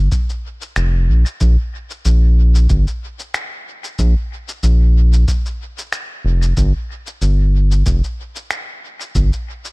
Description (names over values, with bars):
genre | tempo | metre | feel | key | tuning
ambient dub | 93 BPM | 4/4 | swing 55% on 16ths | unclear | A4 = 440 Hz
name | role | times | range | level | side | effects
round analog bass | bass | 0.0-9.3 s | F1 to Bb1 | -12 LUFS | equal | none
electronic cabasa and finger snaps | drums | 0.1-9.7 s | none | -27 LUFS | left 1 dB | small room reverb, dub echo
electronic kick drum | drums | 0.1-9.3 s | none | -20 LUFS | equal | small room reverb
room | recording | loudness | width
digital ambience | echo-heavy mix | -14 LUFS | side -27 dB against mid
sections
0.0-9.7 A section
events
none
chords
none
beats
0.12 0.76 | 1.41 2.05 2.70 3.34 | 3.99 4.63 5.28 5.92 | 6.57 7.21 7.86 8.50 | 9.15